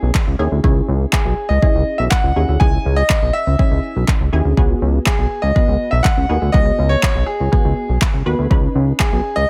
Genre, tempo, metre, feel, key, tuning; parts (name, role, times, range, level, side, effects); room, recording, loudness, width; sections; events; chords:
dance-pop; 122 BPM; 4/4; straight; C# minor; A4 = 435 Hz
bright concert grand piano; melody; 0.0-9.5 s; G#4 to G#5; -23 LUFS; equal; digital delay
punchy chord stab; accompaniment; 0.0-9.3 s; B3 to B4; -27 LUFS; equal; chorus, phaser, sidechain pumping
chorused synth bass; bass; 0.0-9.5 s; B1 to D#2; -19 LUFS; equal; sidechain pumping
deep house drum kit; drums; 0.1-9.1 s; handclaps, kick drum; -18 LUFS; equal
digital ambience; -16 LUFS; mono
0.0-9.5 A section
0.0 C#m; 4.6 G#m7; 8.5 Badd9